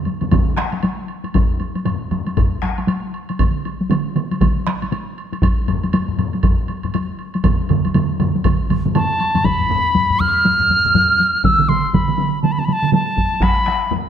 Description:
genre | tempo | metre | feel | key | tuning
japanese traditional, taiko drum ensemble | 119 BPM | 4/4 | swing 60% on 16ths | unclear | A4 = 440 Hz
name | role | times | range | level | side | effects
taiko ensemble | percussion | 0.1-14.1 s | none | -22 LUFS | left 2 dB | none
woodblock | percussion | 0.1-9.4 s | none | -32 LUFS | right 5 dB | none
taiko ensemble | percussion | 0.2-14.0 s | none | -23 LUFS | left 4 dB | none
taiko ensemble | percussion | 0.2-13.1 s | none | -20 LUFS | right 7 dB | none
taiko ensemble | percussion | 0.3-13.6 s | none | -20 LUFS | equal | none
piccolo | melody | 8.9-13.9 s | A5 to F6 | -16 LUFS | equal | slapback echo
room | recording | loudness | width
moderate scoring stage reverb, RT60 1.6 s | none | -15 LUFS | side -9 dB against mid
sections
0.0-9.5 A section; 9.5-14.1 B section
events
speeding up 0.0-14.1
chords
none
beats
0.32 0.84 | 1.35 1.86 2.38 2.89 | 3.40 3.90 4.41 4.92 | 5.43 5.93 6.44 6.94 | 7.45 7.95 8.45 8.95 | 9.45 9.95 10.45 10.95 | 11.44 11.94 12.43 12.93 | 13.42 13.91

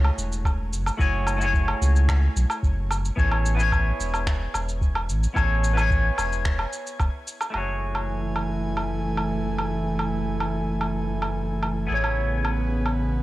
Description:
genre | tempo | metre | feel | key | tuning
sunset chillout | 110 BPM | 4/4 | straight | F# minor | A4 = 439 Hz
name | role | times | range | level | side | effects
clean electric guitar | accompaniment | 0.0-13.2 s | A3 to C#5 | -28 LUFS | left 2 dB | auto-pan, low-pass filter, cassette tape, tape echo, shimmer reverb
warm sub bass | bass | 0.0-13.2 s | E1 to C#2 | -24 LUFS | equal | none
electronic woodblock, shaker and finger snaps | drums | 0.0-13.0 s | none | -30 LUFS | right 1 dB | overdrive, cassette tape
electronic kick drum | drums | 0.4-7.1 s | none | -24 LUFS | equal | cassette tape
airy breathy pad | sustained chords | 7.5-13.2 s | C#3 to G#5 | -27 LUFS | right 1 dB | chorus, cassette tape
room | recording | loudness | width
light reverb, digital ambience | home recording on cassette | -22 LUFS | side -17 dB against mid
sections
0.0-7.5 A section; 7.5-13.2 B section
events
none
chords
0.0 F#m9; 3.2 Amaj9; 7.5 F#m9; 11.9 Amaj9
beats
0.45 | 0.99 1.54 2.08 2.63 | 3.18 3.72 4.27 4.81 | 5.36 5.90 6.45 6.99 | 7.54 8.09 8.63 9.18 | 9.72 10.27 10.81 11.36 | 11.90 12.45 12.99

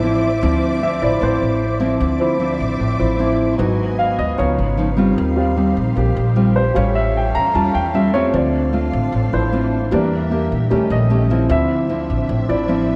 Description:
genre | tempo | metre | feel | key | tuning
bossa nova | 152 BPM | 4/4 | straight | D minor | A4 = 439 Hz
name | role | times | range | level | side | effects
clear grand piano | accompaniment | 0.0-13.0 s | F3 to Bb5 | -23 LUFS | equal | none
nylon-string guitar | accompaniment | 0.0-13.0 s | G#2 to G4 | -22 LUFS | equal | none
dark studio string section | sustained chords | 0.0-13.0 s | C#4 to D6 | -30 LUFS | equal | none
upright bass | bass | 0.0-13.0 s | G#1 to Bb2 | -23 LUFS | equal | none
room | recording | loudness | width
moderate concert hall reverb, RT60 2.1 s | dark, warm production | -18 LUFS | mono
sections
0.0-2.0 A section; 2.0-13.0 A section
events
grand piano solo 0.0-13.0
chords
0.0 Dm9; 3.6 G#m7; 4.4 C#9; 5.2 Eb69; 6.8 A7b13; 8.3 Dm7; 9.9 Em7b5; 10.7 Eb7#11; 11.5 Dm9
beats
0.03 | 0.42 0.82 1.22 1.61 | 2.00 2.40 2.80 3.19 | 3.59 3.98 4.38 4.78 | 5.17 5.57 5.96 6.36 | 6.75 7.15 7.55 7.94 | 8.34 8.73 9.13 9.53 | 9.92 10.32 10.71 11.11 | 11.50 11.90 12.29 12.69

